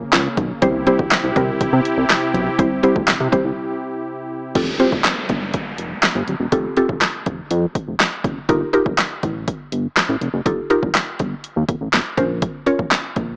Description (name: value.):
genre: dance-pop.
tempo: 122 BPM.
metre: 4/4.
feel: straight.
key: F major.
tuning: A4 = 440 Hz.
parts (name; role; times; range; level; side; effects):
mallet-like synth pluck; accompaniment; 0.0-13.4 s; G3 to Db5; -21 LUFS; equal; chorus, sidechain pumping.
warm analog pad; sustained chords; 0.0-4.5 s; C3 to G4; -26 LUFS; equal; chorus, sidechain pumping.
chorused synth bass; bass; 0.0-13.4 s; Eb1 to C3; -24 LUFS; equal; sidechain pumping.
deep house drum kit; drums; 0.1-13.3 s; crash cymbal, handclaps, hi-hat, kick drum, snare drum; -22 LUFS; equal; none.
downlifter; sound effects; 4.6-8.5 s; none; -31 LUFS; equal; none.
room: moderate spring reverb, RT60 2.2 s.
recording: cassette tape, small speaker sound.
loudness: -19 LUFS.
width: mono.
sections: 0.0-4.6 A section; 4.6-13.4 B section.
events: break 3.6-4.6.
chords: 0.0 Bbmadd9; 0.6 C; 4.6 Fadd9; 8.5 Ebadd9; 12.2 Bbmadd9.